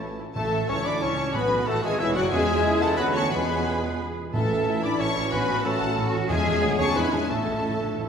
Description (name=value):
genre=classical, dramatic, fast romantic movement for symphony orchestra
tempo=182 BPM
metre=3/4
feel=rubato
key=A major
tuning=A4 = 440 Hz
part: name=rich symphonic violin section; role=melody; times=0.0-8.1 s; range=E5 to D6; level=-33 LUFS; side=left 4 dB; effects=none
part: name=bright small flute group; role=second line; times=0.0-8.1 s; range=A4 to D6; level=-33 LUFS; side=left 3 dB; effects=none
part: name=dark clarinet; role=second line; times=0.0-8.1 s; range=B3 to D5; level=-32 LUFS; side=left 1 dB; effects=none
part: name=warm cor anglais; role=second line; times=0.0-8.1 s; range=E4 to D5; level=-35 LUFS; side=right 2 dB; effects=none
part: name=warm studio violin section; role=second line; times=0.0-8.1 s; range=C#4 to B5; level=-34 LUFS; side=left 1 dB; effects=none
part: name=clear symphonic viola section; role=accompaniment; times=0.0-8.1 s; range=E3 to D5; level=-32 LUFS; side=right 2 dB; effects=none
part: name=warm bassoon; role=accompaniment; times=0.0-8.1 s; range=E3 to D4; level=-33 LUFS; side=right 2 dB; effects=none
part: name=mellow French horn section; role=sustained chords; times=0.0-8.1 s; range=E3 to D4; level=-29 LUFS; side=left 2 dB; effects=none
part: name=rich symphonic cello section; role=bass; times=0.0-8.1 s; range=C#4 to G#4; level=-32 LUFS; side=right 2 dB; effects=none
part: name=rich symphonic double bass section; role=bass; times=0.0-8.1 s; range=E1 to E2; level=-31 LUFS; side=right 3 dB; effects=none
part: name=timpani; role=percussion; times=0.4-8.1 s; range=E2 to A2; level=-32 LUFS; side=equal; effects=none
room=wet scoring stage reverb, RT60 1.8 s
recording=heard from further back in the room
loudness=-22 LUFS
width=side -7 dB against mid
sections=0.4-8.1 A section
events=timpani fill 7.3-8.1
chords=0.4 A; 1.3 F#m; 2.3 C#m/E; 3.0 Bm/D; 3.3 E; 4.3 A; 5.3 F#m/A; 6.3 C#m/E; 6.6 Bm; 7.0 E7; 7.3 A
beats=0.02 | 0.36 0.69 1.02 | 1.35 1.67 2.00 | 2.32 2.64 2.97 | 3.31 3.66 4.00 | 4.33 4.67 5.00 | 5.33 5.65 5.97 | 6.30 6.62 6.96 | 7.30 7.65 8.00